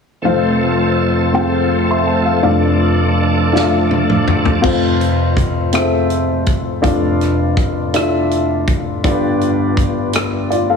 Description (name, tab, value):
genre	slow gospel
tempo	55 BPM (dotted quarters)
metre	6/8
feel	straight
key	F major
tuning	A4 = 440 Hz
part	dark upright piano	accompaniment	0.2-10.8 s	F1 to C6	-14 LUFS	left 2 dB	none
part	bright tonewheel organ	sustained chords	0.2-4.6 s	F3 to A4	-17 LUFS	right 3 dB	fast rotary speaker, overdrive, chorus vibrato
part	natural country drum kit	drums	3.6-10.7 s	crash cymbal, hi-hat, kick drum, rim click, snare drum, toms	-18 LUFS	equal	none
room	wet large studio reverb, RT60 1.3 s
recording	heavily compressed radio sound, multiband compression, small room ambience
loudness	-13 LUFS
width	side -6 dB against mid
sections	0.2-4.6 A section; 4.6-10.8 B section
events	drum fill 3.5-4.6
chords	0.2 F; 2.4 Dm/F; 4.6 F; 6.8 Dm/F; 9.0 G7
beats	| 0.24 1.34 | 2.44 3.54 | 4.64 5.74 | 6.84 7.94 | 9.04 10.14